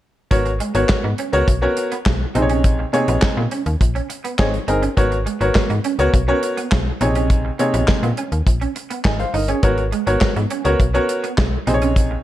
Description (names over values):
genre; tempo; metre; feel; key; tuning
early-eighties boogie funk; 103 BPM; 4/4; straight; unclear; A4 = 440 Hz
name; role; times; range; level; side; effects
clear baby grand piano; accompaniment; 0.3-12.2 s; B#2 to G#5; -20 LUFS; left 1 dB; none
slap-like FM bass; bass; 0.3-12.2 s; G1 to A#2; -21 LUFS; equal; none
modern studio drum kit; drums; 0.3-12.1 s; handclaps, hi-hat, kick drum, snare drum; -19 LUFS; equal; gated reverb
electric guitar at the edge of break-up; riff; 0.5-12.1 s; G#3 to D#4; -26 LUFS; right 6 dB; ensemble chorus
room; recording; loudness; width
light reverb; none; -16 LUFS; side -14 dB against mid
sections
0.3-12.2 A section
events
none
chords
0.3 G#m11; 2.4 A#m11; 5.0 G#m11; 7.0 A#m11; 9.6 G#m11; 11.7 A#m11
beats
| 0.31 0.90 1.48 2.06 | 2.64 3.23 3.81 4.39 | 4.97 5.55 6.14 6.72 | 7.30 7.88 8.47 9.05 | 9.63 10.21 10.80 11.38 | 11.96